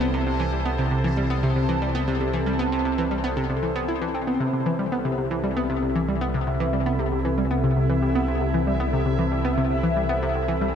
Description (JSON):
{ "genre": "ambient, sequencer-driven space music", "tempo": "116 BPM", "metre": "4/4", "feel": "straight", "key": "C major", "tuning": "A4 = 444 Hz", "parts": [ { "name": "phased analog pad", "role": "sustained chords", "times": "0.0-10.8 s", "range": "C3 to A5", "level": "-26 LUFS", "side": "right 1 dB", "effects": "phaser, chorus" }, { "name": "analog pluck", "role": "riff", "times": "0.0-10.7 s", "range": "C3 to E4", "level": "-25 LUFS", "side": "left 1 dB", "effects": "chorus, ping-pong delay" }, { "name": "warm sub bass", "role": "bass", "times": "0.0-10.8 s", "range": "C2", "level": "-29 LUFS", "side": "equal", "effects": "none" }, { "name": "bubbling stepped-filter texture", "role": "texture", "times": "0.0-10.8 s", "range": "E4 to E5", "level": "-33 LUFS", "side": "right 2 dB", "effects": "chorus, built-in reverb, shimmer reverb" } ], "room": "moderate plate reverb, RT60 2.4 s", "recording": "dark, warm production", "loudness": "-21 LUFS", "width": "side -8 dB against mid", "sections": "0.0-10.8 A section", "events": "none", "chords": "0.0 C6" }